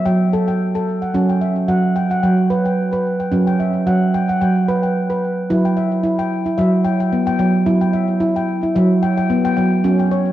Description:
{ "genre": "world meditative", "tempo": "110 BPM", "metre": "4/4", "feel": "swing 55% on 16ths", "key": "unclear", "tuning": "A4 = 440 Hz", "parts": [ { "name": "handpan", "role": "solo", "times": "0.0-10.3 s", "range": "F#3 to G5", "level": "-15 LUFS", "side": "right 1 dB", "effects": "ping-pong delay" } ], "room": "wet echo chamber reverb, RT60 2.5 s", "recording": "worn, warbling old tape, cassette tape, warbly pitch drift", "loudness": "-15 LUFS", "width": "side -13 dB against mid", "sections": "0.0-5.5 A section; 5.5-10.3 B section", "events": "none", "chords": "0.0 N.C.; 1.1 C#m/F#; 5.5 E5/F#" }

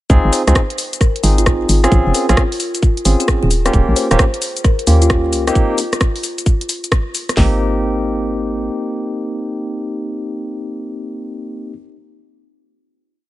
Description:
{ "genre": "UK garage, two-step garage", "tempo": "132 BPM", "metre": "4/4", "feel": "swing 65% on 16ths", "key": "Ab major", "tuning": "A4 = 437 Hz", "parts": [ { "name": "barky tine electric piano", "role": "stabs", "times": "0.1-11.7 s", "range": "Bb3 to Ab4", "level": "-20 LUFS", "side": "equal", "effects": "medium stereo tremolo, vintage 12-bit sampler grit, digital delay" }, { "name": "hollow knocking FM bass", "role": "bass", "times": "0.1-8.7 s", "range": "Eb1 to Eb2", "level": "-15 LUFS", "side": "equal", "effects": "none" }, { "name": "garage drum kit", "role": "drums", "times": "0.1-7.5 s", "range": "hi-hat, kick drum, snare drum", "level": "-14 LUFS", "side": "equal", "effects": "none" }, { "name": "garage drum kit", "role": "drums", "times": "0.1-7.4 s", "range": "cabasa, hi-hat, rim click", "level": "-20 LUFS", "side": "left 1 dB", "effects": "none" }, { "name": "kalimba", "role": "melody", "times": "0.3-5.4 s", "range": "F4 to C5", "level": "-24 LUFS", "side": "equal", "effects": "digital delay" } ], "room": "digital ambience", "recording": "nothing above 11.0 kHz", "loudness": "-14 LUFS", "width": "side -16 dB against mid", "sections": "0.1-7.4 drop; 7.4-11.0 final chord", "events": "drop 0.1-7.4", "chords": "0.1 Dbmaj9; 1.9 Bbm7 (rootless); 3.5 Eb7; 5.6 Bbsus24; 7.4 Abmaj9" }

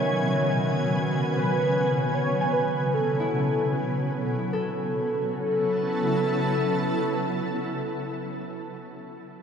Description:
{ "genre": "ambient", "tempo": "76 BPM", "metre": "4/4", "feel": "straight", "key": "A lydian", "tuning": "A4 = 439 Hz", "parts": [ { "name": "warm velvety synth lead", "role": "melody", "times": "0.0-8.4 s", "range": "A4 to C#5", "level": "-28 LUFS", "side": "equal", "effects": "chorus, ping-pong delay" }, { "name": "shimmering ambient pad", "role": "sustained chords", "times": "0.0-8.4 s", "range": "B2 to G#5", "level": "-26 LUFS", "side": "equal", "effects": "chorus, built-in reverb" }, { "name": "concert harp", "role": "arpeggios", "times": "0.0-8.7 s", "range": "D#3 to G#5", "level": "-32 LUFS", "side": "equal", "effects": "ping-pong delay" } ], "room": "wet huge ambient reverb, RT60 6.9 s", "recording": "dark, warm production", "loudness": "-23 LUFS", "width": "side -7 dB against mid", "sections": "0.0-4.5 A section; 4.5-7.7 B section", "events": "none", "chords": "0.0 Amaj9; 4.5 Aadd9" }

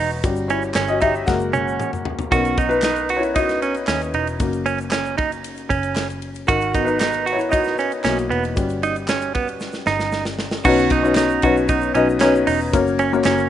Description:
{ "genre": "piano-driven pop", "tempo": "115 BPM", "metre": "4/4", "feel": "straight", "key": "B major", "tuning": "A4 = 438 Hz", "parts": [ { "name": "felt-muted upright piano", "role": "accompaniment", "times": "0.0-13.5 s", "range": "B2 to F#5", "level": "-21 LUFS", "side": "left 4 dB", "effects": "none" }, { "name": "direct-recorded clean electric guitar", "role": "riff", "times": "0.0-13.5 s", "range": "B3 to F#4", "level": "-21 LUFS", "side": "right 6 dB", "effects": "spring reverb" }, { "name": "vintage muted picked electric bass", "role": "bass", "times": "0.0-13.5 s", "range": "E1 to D#2", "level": "-29 LUFS", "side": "equal", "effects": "none" }, { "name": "tube shaker", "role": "percussion", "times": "0.1-13.5 s", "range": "none", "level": "-46 LUFS", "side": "left 4 dB", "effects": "none" }, { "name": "modern studio drum kit", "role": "drums", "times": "0.2-13.4 s", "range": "crash cymbal, handclaps, hi-hat, kick drum, ride cymbal, snare drum, toms", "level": "-25 LUFS", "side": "equal", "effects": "none" } ], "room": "light reverb", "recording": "rough home demo mix, nothing above 10.9 kHz", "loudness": "-17 LUFS", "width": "side -11 dB against mid", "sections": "0.0-2.3 A section; 2.3-10.6 B section; 10.6-13.5 A section", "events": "felt piano solo 0.0-2.3, 2.3-10.6; drum fill 1.3-2.3, 9.6-10.6", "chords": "0.2 Em6/G; 1.3 F#add9; 2.3 Badd9; 4.4 F#; 6.5 G#m7; 8.6 Gmaj7(b5, no3); 10.6 Badd9; 12.7 F#" }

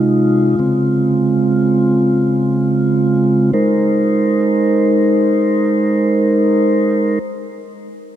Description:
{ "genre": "dream pop", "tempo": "free time", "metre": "none", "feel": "none", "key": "Ab major", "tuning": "A4 = 440 Hz", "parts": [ { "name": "mellow tonewheel organ", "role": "sustained chords", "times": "0.0-7.2 s", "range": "C3 to C5", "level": "-12 LUFS", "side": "right 1 dB", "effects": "slow rotary speaker" } ], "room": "moderate huge ambient reverb, RT60 4.1 s", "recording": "dark, warm production", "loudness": "-12 LUFS", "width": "side -10 dB against mid", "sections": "0.0-3.5 A section; 3.5-6.5 B section", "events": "none", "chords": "0.0 Fm7/C; 0.6 Dbmaj7; 3.5 Abadd9" }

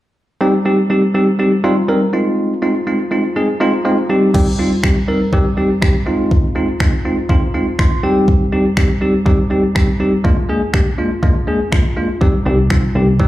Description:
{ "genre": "dance-pop", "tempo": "122 BPM", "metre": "4/4", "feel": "straight", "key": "C minor", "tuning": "A4 = 439 Hz", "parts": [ { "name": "bell-like tine electric piano", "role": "accompaniment", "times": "0.4-13.3 s", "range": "G3 to C6", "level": "-14 LUFS", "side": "equal", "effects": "sidechain pumping, slapback echo" }, { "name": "pop drum kit", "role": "drums", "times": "4.3-13.3 s", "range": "crash cymbal, finger snaps, kick drum", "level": "-14 LUFS", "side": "equal", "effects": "overdrive" }, { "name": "plucky analog bass", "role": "bass", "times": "12.5-13.2 s", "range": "C2", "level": "-14 LUFS", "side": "equal", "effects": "sidechain pumping" } ], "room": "moderate plate reverb, RT60 1.6 s, digital ambience", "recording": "live gig heard through the venue's PA, club reverb", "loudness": "-13 LUFS", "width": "side -15 dB against mid", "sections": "0.4-4.3 A section; 4.3-13.3 B section", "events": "tine electric piano fill 7.5-8.3", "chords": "0.4 Cm; 2.1 Fm7; 4.1 Cm; 6.1 Fm7; 8.0 Cm; 10.2 Bb7; 12.2 Cm" }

